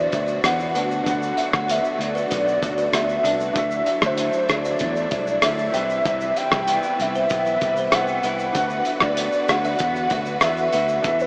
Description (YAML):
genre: indie pop, bedroom pop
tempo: 96 BPM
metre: 4/4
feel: straight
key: B phrygian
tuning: A4 = 440 Hz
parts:
  - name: warbly nostalgic lead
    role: melody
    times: 0.0-11.3 s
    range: B4 to G5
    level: -22 LUFS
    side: equal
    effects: tremolo, analog chorus, analog delay
  - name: bright upright piano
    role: accompaniment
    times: 0.0-11.3 s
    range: C4 to F#5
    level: -34 LUFS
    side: equal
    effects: none
  - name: electric guitar through a small old amp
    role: accompaniment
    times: 0.0-11.3 s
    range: C3 to F#4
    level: -30 LUFS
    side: equal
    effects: wide subtle chorus, vibrato effect
  - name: string machine, violas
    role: sustained chords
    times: 0.0-11.3 s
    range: B2 to B4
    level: -31 LUFS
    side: equal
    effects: ensemble chorus
  - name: picked electric bass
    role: bass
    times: 0.0-11.3 s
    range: B1 to E2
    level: -31 LUFS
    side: equal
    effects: none
  - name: buzzing kalimba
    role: second line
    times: 0.1-10.9 s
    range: B4 to E5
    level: -31 LUFS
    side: equal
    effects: none
  - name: cloth-damped thuddy drum kit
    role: drums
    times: 0.1-11.3 s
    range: hi-hat, kick drum, rim click, shaker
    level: -25 LUFS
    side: equal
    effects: none
room: wet huge ambient reverb, RT60 7.0 s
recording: dreamy mix soaked in reverb, small speaker sound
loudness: -18 LUFS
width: side -34 dB against mid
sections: 0.0-11.3 A section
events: none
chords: 0.0 Bm/D; 3.6 Dadd9; 5.7 Cmaj7; 8.6 Bm/D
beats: 0.44 | 1.06 1.69 2.31 2.94 | 3.56 4.18 4.81 5.43 | 6.06 6.68 7.31 7.93 | 8.56 9.18 9.81 10.43 | 11.06